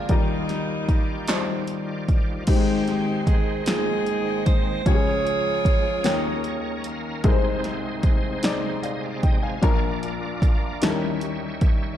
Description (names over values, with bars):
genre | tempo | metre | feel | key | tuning
slow gospel | 50 BPM (dotted quarters) | 6/8 | straight | Eb major | A4 = 441 Hz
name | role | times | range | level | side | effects
clear saxophone section | melody | 0.0-6.8 s | G3 to Db5 | -26 LUFS | right 3 dB | none
warm upright piano | accompaniment | 0.0-12.0 s | Ab1 to Ab5 | -27 LUFS | left 5 dB | none
bright tonewheel organ | sustained chords | 0.0-12.0 s | C3 to Ab5 | -31 LUFS | right 2 dB | fast rotary speaker, overdrive, chorus vibrato
punchy analog drum machine | drums | 0.1-11.8 s | crash cymbal, hi-hat, kick drum, snare drum | -22 LUFS | equal | none
group handclap | percussion | 1.3-1.7 s | none | -31 LUFS | right 3 dB | none
room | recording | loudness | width
light reverb | dark, warm production | -20 LUFS | side -11 dB against mid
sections
0.0-2.5 A section; 2.5-12.0 B section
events
tonewheel organ fill 6.1-7.2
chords
0.1 Ebmaj9; 2.5 Ab; 4.9 Db; 6.1 Eb7; 7.2 Ab/C; 9.6 Bb; 10.8 Eb7b9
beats
| 0.09 1.28 | 2.48 3.67 | 4.86 6.05 | 7.24 8.44 | 9.63 10.82